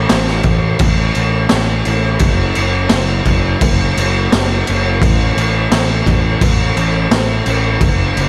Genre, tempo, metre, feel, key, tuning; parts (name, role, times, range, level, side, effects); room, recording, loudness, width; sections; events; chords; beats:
rock, shoegaze and dream pop; 86 BPM; 4/4; straight; A4 = 440 Hz
fuzz picked electric bass; bass; 0.0-8.3 s; F#1 to A1; -18 LUFS; equal; overdrive
raw garage drum kit; drums; 0.1-8.3 s; crash cymbal, kick drum, snare drum; -16 LUFS; equal
little or no reverb; -14 LUFS; mono
0.0-8.3 A section
0.11 0.81 1.51 | 2.21 2.91 3.61 4.31 | 5.01 5.72 6.42 7.12 | 7.82